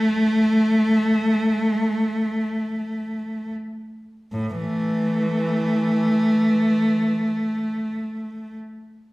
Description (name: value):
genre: classical, free, expressive piece for unaccompanied cello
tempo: free time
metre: none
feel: none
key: unclear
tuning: A4 = 440 Hz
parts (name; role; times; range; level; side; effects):
- rich cello; solo; 0.0-8.6 s; A2 to A3; -20 LUFS; equal; none
room: wet recital hall reverb, RT60 1.4 s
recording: heard from further back in the room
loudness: -19 LUFS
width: side -20 dB against mid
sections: 0.0-4.3 A section; 4.3-9.1 B section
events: slowing down 0.0-4.3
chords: none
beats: free time